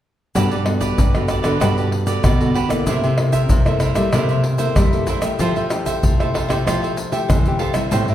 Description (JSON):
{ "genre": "samba and choro", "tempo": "95 BPM", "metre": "4/4", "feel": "straight", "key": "G major", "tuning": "A4 = 440 Hz", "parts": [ { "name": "cavaquinho", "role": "accompaniment", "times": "0.3-8.1 s", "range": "E4 to G5", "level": "-24 LUFS", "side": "right 4 dB", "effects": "none" }, { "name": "nylon-string guitar", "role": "accompaniment", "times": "0.4-8.1 s", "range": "G2 to A4", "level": "-23 LUFS", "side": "left 2 dB", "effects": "none" }, { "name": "nylon-string guitar", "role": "bass", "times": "0.4-8.1 s", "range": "G2 to G3", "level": "-21 LUFS", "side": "equal", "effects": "none" }, { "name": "tube shaker, surdo, pandeiro and tamborim", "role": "percussion", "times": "0.4-8.1 s", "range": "none", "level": "-19 LUFS", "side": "equal", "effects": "none" } ], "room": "wet large studio reverb, RT60 1.4 s", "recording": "heard from further back in the room", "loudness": "-16 LUFS", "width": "side -12 dB against mid", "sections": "0.4-8.1 A section", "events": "none", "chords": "0.4 Gmaj9; 2.9 C6; 5.4 Fmaj9", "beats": "| 0.36 0.99 1.62 2.25 | 2.88 3.51 4.14 4.77 | 5.40 6.03 6.66 7.29 | 7.92" }